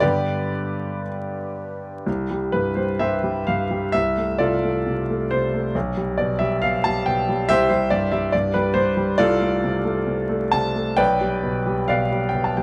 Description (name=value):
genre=classical, romantic character piece for solo piano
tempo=56-72 BPM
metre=2/4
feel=rubato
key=C major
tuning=A4 = 439 Hz
part: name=clear grand piano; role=solo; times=0.0-12.6 s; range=B1 to A5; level=-22 LUFS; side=equal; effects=none
room=light reverb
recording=close, detailed microphones, vinyl crackle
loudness=-22 LUFS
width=mono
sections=0.0-2.1 A section; 2.1-12.6 B section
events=none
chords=0.0 G; 2.1 C5; 3.9 Dm7/C; 5.7 G/B; 7.5 C5; 9.2 Dm7/C; 11.0 G/B